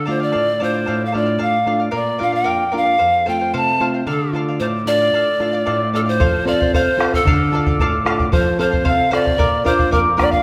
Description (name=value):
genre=andean folk, Andean ensemble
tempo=113 BPM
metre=2/4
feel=straight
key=D minor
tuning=A4 = 440 Hz
part: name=bright reedy pan flute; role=melody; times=0.0-10.4 s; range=A4 to A5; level=-21 LUFS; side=equal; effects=none
part: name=charango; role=accompaniment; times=0.0-10.4 s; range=A4 to F5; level=-25 LUFS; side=equal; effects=none
part: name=nylon-string guitar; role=accompaniment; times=0.0-10.4 s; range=F2 to A4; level=-23 LUFS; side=equal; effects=none
part: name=bombo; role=percussion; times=6.2-10.4 s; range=none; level=-22 LUFS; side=equal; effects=none
room=moderate scoring stage reverb, RT60 1.6 s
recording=none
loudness=-17 LUFS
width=mono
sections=0.0-6.2 A section; 6.2-10.4 B section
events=none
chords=0.0 Dm; 1.9 Bb; 3.0 F; 4.1 Dm; 6.2 F; 7.3 Dm; 8.3 F; 9.4 Bb